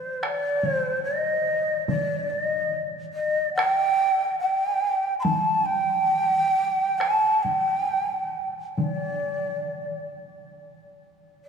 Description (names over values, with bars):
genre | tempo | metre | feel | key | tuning
japanese traditional, Japanese chamber music | 66-74 BPM | 4/4 | rubato | D in sen | A4 = 435 Hz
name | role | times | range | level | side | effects
breathy hollow shakuhachi | melody | 0.0-11.5 s | C5 to C6 | -23 LUFS | right 1 dB | none
taiko ensemble | percussion | 0.2-9.0 s | none | -31 LUFS | equal | none
room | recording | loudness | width
wet cathedral reverb, RT60 4.6 s | small room ambience | -22 LUFS | side -6 dB against mid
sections
0.0-10.6 A section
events
none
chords
none